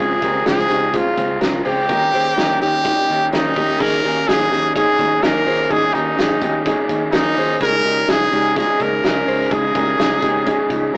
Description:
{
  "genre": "jangly indie pop",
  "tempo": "126 BPM",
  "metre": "4/4",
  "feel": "straight",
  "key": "unclear",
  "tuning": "A4 = 440 Hz",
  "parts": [
    { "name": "brilliant trumpet", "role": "melody", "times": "0.0-10.9 s", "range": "Eb4 to Bb4", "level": "-21 LUFS", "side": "equal", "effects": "none" },
    { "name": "combo organ", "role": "accompaniment", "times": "0.0-11.0 s", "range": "C4 to Bb4", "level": "-31 LUFS", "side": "equal", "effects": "none" },
    { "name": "raw garage guitar", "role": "accompaniment", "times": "0.0-11.0 s", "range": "Db3 to Ab4", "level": "-26 LUFS", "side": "equal", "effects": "overdrive" },
    { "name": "mellow electric guitar", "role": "arpeggios", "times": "0.0-11.0 s", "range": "Eb4 to C5", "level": "-24 LUFS", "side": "equal", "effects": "none" },
    { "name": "vintage muted fingered electric bass", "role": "bass", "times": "0.0-11.0 s", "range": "Db2 to Eb2", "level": "-34 LUFS", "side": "equal", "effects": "none" },
    { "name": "loose indie drum kit", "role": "drums", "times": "0.2-11.0 s", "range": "crash cymbal, hi-hat, kick drum, snare drum", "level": "-26 LUFS", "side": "equal", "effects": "none" }
  ],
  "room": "moderate booth ambience, RT60 0.2 s",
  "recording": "rough rehearsal-room recording, warm saturation, AM radio sound",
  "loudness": "-17 LUFS",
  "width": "mono",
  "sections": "0.0-3.8 A section; 3.8-11.0 B section",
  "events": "none",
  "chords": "0.0 Dbmaj7; 1.9 Eb7; 3.8 Eb7sus4; 7.6 Dbsus2"
}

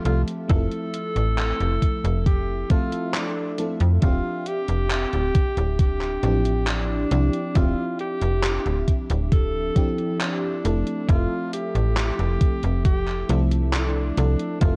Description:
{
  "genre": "vaporwave",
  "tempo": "68 BPM",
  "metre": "4/4",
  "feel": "straight",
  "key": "F major",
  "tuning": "A4 = 440 Hz",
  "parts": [
    { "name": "warm alto saxophone", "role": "melody", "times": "0.0-14.8 s", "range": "D4 to A4", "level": "-31 LUFS", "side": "equal", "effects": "tape echo" },
    { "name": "FM electric piano with soft pad layer", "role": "accompaniment", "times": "0.0-14.8 s", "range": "F3 to E5", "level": "-30 LUFS", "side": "equal", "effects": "lush chorus" },
    { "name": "slap-like FM bass", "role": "bass", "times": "0.1-14.8 s", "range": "D1 to F2", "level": "-25 LUFS", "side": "equal", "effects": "none" },
    { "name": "gated 80s digital drum machine", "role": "drums", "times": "0.1-14.8 s", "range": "handclaps, hi-hat", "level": "-32 LUFS", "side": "equal", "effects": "gated reverb, overdrive" },
    { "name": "electronic kick drum", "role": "drums", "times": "0.5-14.8 s", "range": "none", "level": "-22 LUFS", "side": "equal", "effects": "overdrive" }
  ],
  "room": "light reverb, digital ambience",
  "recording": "cassette tape",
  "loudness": "-23 LUFS",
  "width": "mono",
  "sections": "0.0-14.8 A section",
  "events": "none",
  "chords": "0.0 Fmaj7; 4.0 Dm11; 10.6 Fmaj7"
}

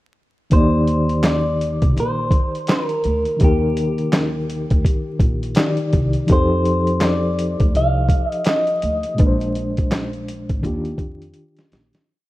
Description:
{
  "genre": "lo-fi hip hop",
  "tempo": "83 BPM",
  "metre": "4/4",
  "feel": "swing 60% on 16ths",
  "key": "Eb major",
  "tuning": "A4 = 441 Hz",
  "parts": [
    { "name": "clean electric guitar", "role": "melody", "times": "0.5-9.2 s", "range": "G4 to F5", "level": "-23 LUFS", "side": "equal", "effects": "spring reverb" },
    { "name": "reed electric piano", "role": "accompaniment", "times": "0.5-12.1 s", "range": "Bb2 to D5", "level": "-22 LUFS", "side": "left 1 dB", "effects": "fast tremolo" },
    { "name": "upright bass", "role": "bass", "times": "0.5-11.9 s", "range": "Ab1 to F2", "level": "-22 LUFS", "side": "equal", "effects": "none" },
    { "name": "lo-fi sampler-style drum kit", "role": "drums", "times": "0.5-12.1 s", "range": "handclaps, hi-hat, kick drum, snare drum", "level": "-18 LUFS", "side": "equal", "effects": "none" }
  ],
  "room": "little or no reverb",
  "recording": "rough home demo mix, vinyl crackle",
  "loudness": "-16 LUFS",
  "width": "side -17 dB against mid",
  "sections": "0.5-12.1 A section",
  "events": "break 9.2-12.1; fade-out 9.2-12.1; drum fill 11.4-12.1",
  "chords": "0.5 Ebmaj7; 6.3 F13; 9.2 Bb9; 10.6 Ebmaj9"
}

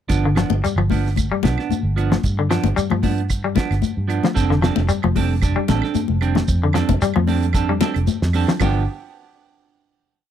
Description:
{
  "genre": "afrobeat",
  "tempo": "113 BPM",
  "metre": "4/4",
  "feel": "swing 54% on 16ths",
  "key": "G mixolydian",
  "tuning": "A4 = 440 Hz",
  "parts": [
    { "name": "semi-hollow electric guitar", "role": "stabs", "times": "0.1-8.8 s", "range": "F3 to A4", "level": "-24 LUFS", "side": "right 8 dB", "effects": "spring reverb" },
    { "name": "vintage muted fingered electric bass", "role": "bass", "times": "0.1-8.9 s", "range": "F1 to G2", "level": "-20 LUFS", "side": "right 1 dB", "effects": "none" },
    { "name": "damped 70s drum kit", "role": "drums", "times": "0.1-8.7 s", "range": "crash cymbal, hi-hat, kick drum, snare drum", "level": "-23 LUFS", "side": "right 1 dB", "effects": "none" },
    { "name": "shekere", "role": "percussion", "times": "0.1-8.7 s", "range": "none", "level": "-29 LUFS", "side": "right 3 dB", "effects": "none" },
    { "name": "clean electric guitar", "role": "arpeggios", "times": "0.3-8.8 s", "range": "G2 to G3", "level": "-22 LUFS", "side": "left 6 dB", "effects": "none" },
    { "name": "claves", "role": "percussion", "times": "0.4-8.7 s", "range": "none", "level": "-32 LUFS", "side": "right 21 dB", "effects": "none" },
    { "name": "congas", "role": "percussion", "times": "0.5-8.7 s", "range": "none", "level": "-24 LUFS", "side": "left 16 dB", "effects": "none" }
  ],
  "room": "little or no reverb",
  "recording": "dry, close 1970s-style studio recording",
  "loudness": "-17 LUFS",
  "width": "side -10 dB against mid",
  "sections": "0.1-8.6 groove; 8.6-10.3 final chord",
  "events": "none",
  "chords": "0.1 G7; 4.4 F69; 8.6 G7"
}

